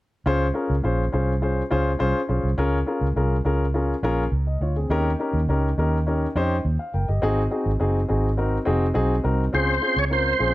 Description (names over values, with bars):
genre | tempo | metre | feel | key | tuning
uptempo 1960s-style soul | 104 BPM | 4/4 | straight | Db major | A4 = 441 Hz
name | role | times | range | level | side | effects
dark baby grand piano | accompaniment | 0.3-10.5 s | C4 to G5 | -24 LUFS | left 2 dB | none
vintage muted fingered electric bass | bass | 0.3-10.5 s | F1 to F2 | -23 LUFS | right 1 dB | none
overdriven tonewheel organ | melody | 9.5-10.5 s | C5 to Db5 | -21 LUFS | right 1 dB | chorus vibrato, slow rotary speaker, slapback echo
room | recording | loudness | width
light reverb | none | -20 LUFS | side -16 dB against mid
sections
0.3-9.5 A section; 9.5-10.5 B section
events
none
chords
0.3 Dbmaj7; 2.6 Bbm7; 4.9 Eb7; 7.2 Ab7; 9.5 Dbmaj7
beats
| 0.26 0.84 1.42 2.00 | 2.58 3.16 3.74 4.32 | 4.90 5.48 6.06 6.64 | 7.22 7.80 8.38 8.96 | 9.54 10.11